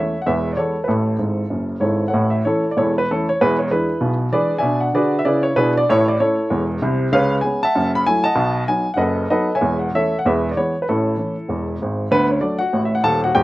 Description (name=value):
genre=jazz, stride piano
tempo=193 BPM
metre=4/4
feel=swing 58% on 8ths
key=A major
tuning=A4 = 440 Hz
part: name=warm upright piano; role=solo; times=0.0-13.4 s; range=Eb1 to B5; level=-16 LUFS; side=equal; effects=none
room=little or no reverb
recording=recorded outdoors, with no room sound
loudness=-16 LUFS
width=side -17 dB against mid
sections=0.0-2.1 A section; 2.1-12.1 A section; 12.1-13.4 B section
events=upright piano fill 1.2-2.1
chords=0.3 E; 0.9 A; 3.4 E7; 4.6 E7/B; 5.9 A; 7.1 C#5; 7.8 F#m7; 8.4 B7; 9.6 A/E; 10.2 E; 10.9 A; 12.1 D